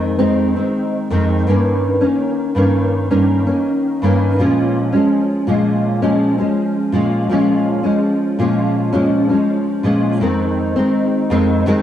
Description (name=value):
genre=indie pop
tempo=82 BPM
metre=4/4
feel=straight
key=Bb dorian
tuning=A4 = 440 Hz
part: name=nylon-string guitar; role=solo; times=0.0-11.8 s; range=F2 to Db4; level=-14 LUFS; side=equal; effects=ensemble chorus, warbly pitch drift
room=moderate spring reverb, RT60 2.4 s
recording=dark, warm production, faint mains hum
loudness=-14 LUFS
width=side -10 dB against mid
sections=0.0-10.2 A section; 10.2-11.8 B section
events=none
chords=0.0 Fm7; 1.5 Eb7/G; 4.4 Bbm7; 10.2 Fm7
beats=0.00 0.73 | 1.46 2.19 2.92 3.65 | 4.38 5.11 5.84 6.57 | 7.30 8.03 8.76 9.49 | 10.22 10.95 11.68